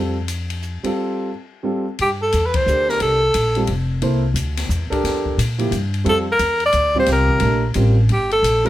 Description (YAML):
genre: modal jazz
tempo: 177 BPM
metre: 3/4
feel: swing 63% on 8ths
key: C mixolydian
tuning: A4 = 441 Hz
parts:
  - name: warm concert grand piano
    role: accompaniment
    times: 0.0-8.7 s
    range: F3 to C5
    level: -22 LUFS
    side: right 2 dB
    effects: none
  - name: upright bass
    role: bass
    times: 0.0-8.7 s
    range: F1 to Bb2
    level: -20 LUFS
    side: equal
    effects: none
  - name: open jazz drum kit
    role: drums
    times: 0.3-8.7 s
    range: hi-hat, kick drum, ride cymbal, snare drum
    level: -28 LUFS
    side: left 3 dB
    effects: none
  - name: breathy alto saxophone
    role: melody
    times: 2.0-3.7, 6.1-8.7 s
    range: G4 to D5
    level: -17 LUFS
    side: equal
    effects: plate reverb
room: moderate studio ambience, RT60 0.4 s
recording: none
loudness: -16 LUFS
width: side -14 dB against mid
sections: 0.0-2.0 A section; 2.0-8.7 B section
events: band accent 2.5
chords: 0.0 Bbmaj7sus2 (rootless); 2.0 C13sus4